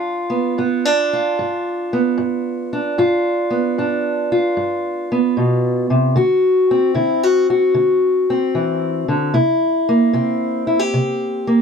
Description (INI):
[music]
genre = blues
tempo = 75 BPM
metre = 4/4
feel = swing 67% on 8ths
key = G mixolydian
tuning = A4 = 440 Hz
[part]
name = fingerpicked steel-string acoustic guitar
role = solo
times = 0.0-11.6 s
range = G2 to G4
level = -15 LUFS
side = equal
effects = none
[sound]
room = light reverb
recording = dry, close 1970s-style studio recording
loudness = -15 LUFS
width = side -6 dB against mid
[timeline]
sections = 0.0-11.6 A section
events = none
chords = 0.0 G7; 6.2 D7; 9.3 C7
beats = 0.58 1.38 2.17 | 2.97 3.77 4.56 5.36 | 6.15 6.95 7.75 8.54 | 9.34 10.14 10.94